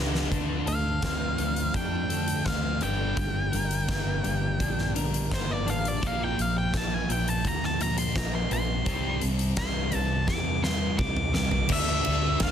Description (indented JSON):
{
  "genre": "quiet-loud alternative rock",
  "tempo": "84 BPM",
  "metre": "4/4",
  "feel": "straight",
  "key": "D minor",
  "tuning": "A4 = 440 Hz",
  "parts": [
    { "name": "thick fuzz guitar", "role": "riff", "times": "0.0-12.5 s", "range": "G2 to D4", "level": "-30 LUFS", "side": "right 1 dB", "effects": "distortion" },
    { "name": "vintage muted fingered electric bass", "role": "bass", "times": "0.0-12.5 s", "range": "G1 to F2", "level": "-31 LUFS", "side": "equal", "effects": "none" },
    { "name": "huge arena drum kit", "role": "drums", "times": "0.1-12.5 s", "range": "crash cymbal, hi-hat, kick drum, ride cymbal, snare drum, toms", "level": "-30 LUFS", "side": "equal", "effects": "none" },
    { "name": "twelve-string electric guitar", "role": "arpeggios", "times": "0.3-6.0 s", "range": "G2 to Bb4", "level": "-36 LUFS", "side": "left 5 dB", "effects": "harmonic tremolo, digital delay" },
    { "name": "octave-fuzz lead guitar", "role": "melody", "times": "0.7-12.5 s", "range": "C5 to D6", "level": "-31 LUFS", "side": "equal", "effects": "distortion" }
  ],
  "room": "little or no reverb",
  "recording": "dense, heavily limited modern master",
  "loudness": "-24 LUFS",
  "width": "side -9 dB against mid",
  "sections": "0.3-11.7 A section",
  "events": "drum fill 0.0-0.3, 10.3-11.7; lead electric guitar solo 0.3-11.7",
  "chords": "0.3 Dm7; 2.8 Gm; 6.0 Bb; 8.9 C; 11.7 D5",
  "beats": "| 0.33 1.04 1.75 2.46 | 3.18 3.89 4.60 5.32 | 6.03 6.74 7.45 8.16 | 8.87 9.58 10.29 11.00 | 11.71 12.42"
}